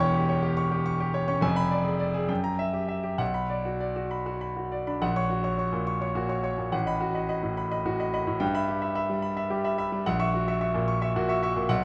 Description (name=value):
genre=classical, virtuoso piano study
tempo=64-75 BPM (dotted quarters)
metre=6/8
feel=rubato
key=unclear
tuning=A4 = 440 Hz
part: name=bright concert grand piano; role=solo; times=0.0-11.8 s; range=E1 to C#6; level=-28 LUFS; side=equal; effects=none
room=moderate recital hall reverb, RT60 1.7 s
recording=close, detailed microphones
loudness=-28 LUFS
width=mono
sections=0.0-5.0 A section; 5.0-11.8 B section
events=none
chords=0.0 C#dim/E; 1.4 Fdim7; 2.3 F#7b9; 3.2 Bm; 5.0 F#/A#; 6.7 B7/A; 8.4 Em/G; 10.1 F#7/A#